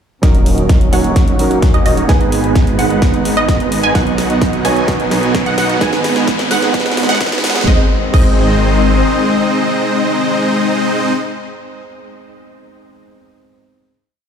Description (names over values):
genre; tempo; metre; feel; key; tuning
EDM, festival progressive house; 129 BPM; 4/4; straight; G# minor; A4 = 440 Hz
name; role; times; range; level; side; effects
dark grand piano; accompaniment; 0.2-13.9 s; G#2 to C#5; -19 LUFS; right 5 dB; sidechain pumping, ping-pong delay
warm chamber string section; sustained chords; 0.2-10.7 s; D#3 to C#4; -22 LUFS; left 5 dB; sidechain pumping, low-pass filter
wide unison pluck; arpeggios; 0.2-11.1 s; D#5 to G#5; -21 LUFS; right 1 dB; phaser, sidechain pumping, ping-pong delay
supersaw chords; riff; 0.2-11.1 s; G#3 to G#5; -17 LUFS; equal; sidechain pumping, low-pass filter, ping-pong delay
wide detuned saw bass; bass; 0.2-9.0 s; D#1 to D#2; -20 LUFS; equal; chorus, tube saturation, sidechain pumping
big-room dance drum kit; drums; 0.2-8.3 s; crash cymbal, hi-hat, snare drum; -23 LUFS; equal; high-pass filter on snare, high-pass filter on hats, high-pass filter on cymbals, high-pass filter on room
electronic kick drum; drums; 0.2-8.3 s; none; -14 LUFS; equal; none
riser; sound effects; 2.7-7.7 s; none; -26 LUFS; equal; none
room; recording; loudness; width
light reverb; played on a big sound system in a bare room, large studio reverb, high-pass filter; -11 LUFS; side -7 dB against mid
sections
0.2-7.7 build; 7.7-11.4 final chord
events
build-up 0.2-7.7; drum fill 0.2-7.7; filter sweep on supersaw synth 0.2-7.7; filter sweep on synth pluck 0.2-7.7; filter sweep 0.2-7.7; riser 2.7-7.7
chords
0.2 D#m7; 2.1 G#m; 4.0 B; 5.8 G#m; 7.7 G#